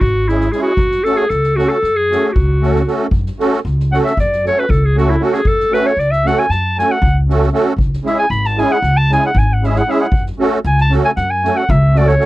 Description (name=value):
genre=balkan folk, Balkan wedding band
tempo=232 BPM (eighths)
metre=9/8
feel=straight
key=F# minor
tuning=A4 = 440 Hz
part: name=bright clarinet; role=melody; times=0.0-12.3 s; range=E4 to B5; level=-16 LUFS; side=equal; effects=none
part: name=upright bass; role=bass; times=0.0-12.1 s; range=G#1 to F#2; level=-16 LUFS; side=equal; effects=none
part: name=soft-mallet drum kit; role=percussion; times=0.0-12.3 s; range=kick drum, snare drum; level=-19 LUFS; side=equal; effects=none
part: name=musette accordion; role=accompaniment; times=0.3-12.3 s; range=G#3 to A4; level=-16 LUFS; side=right 2 dB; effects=none
room=little or no reverb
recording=dry, close 1970s-style studio recording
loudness=-12 LUFS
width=side -17 dB against mid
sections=0.0-12.3 A section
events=clarinet solo 0.0-12.3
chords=0.0 C#m; 0.8 F#m; 7.8 C#m; 10.1 F#m